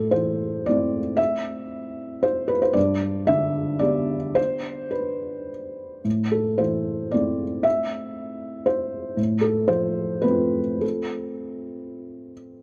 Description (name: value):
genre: neoclassical minimalist piano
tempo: 97-119 BPM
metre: 3/4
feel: rubato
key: A minor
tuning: A4 = 440 Hz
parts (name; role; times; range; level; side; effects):
- felt-muted upright piano; solo; 0.0-12.6 s; G2 to E5; -24 LUFS; equal; none
room: light reverb, small room ambience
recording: dry, close 1970s-style studio recording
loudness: -24 LUFS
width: mono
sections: 0.0-12.6 A section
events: none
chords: 0.0 Am; 2.8 G; 6.0 Am; 9.2 F/A